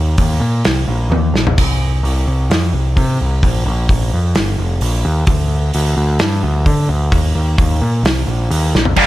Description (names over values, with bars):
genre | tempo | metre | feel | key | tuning
quiet-loud alternative rock | 130 BPM | 4/4 | straight | unclear | A4 = 440 Hz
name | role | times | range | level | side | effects
growling picked electric bass | bass | 0.0-9.1 s | F1 to D3 | -15 LUFS | equal | overdrive
loose indie drum kit | drums | 0.2-9.1 s | crash cymbal, hi-hat, kick drum, snare drum, splash cymbal, toms | -17 LUFS | equal | none
distorted electric guitar | riff | 9.0-9.1 s | G2 to D4 | -9 LUFS | equal | overdrive
room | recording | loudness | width
studio reverb | faint mains hum | -13 LUFS | side -15 dB against mid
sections
0.0-9.0 A section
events
half time 0.0-9.0; drum fill 1.1-1.6, 8.7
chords
0.0 Eb5; 1.6 N.C.; 3.4 Bb5; 5.3 N.C.; 7.1 Eb5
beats
0.18 0.65 1.11 | 1.57 2.04 2.50 2.96 | 3.42 3.89 4.35 4.81 | 5.27 5.74 6.20 6.66 | 7.12 7.58 8.05 8.51 | 8.97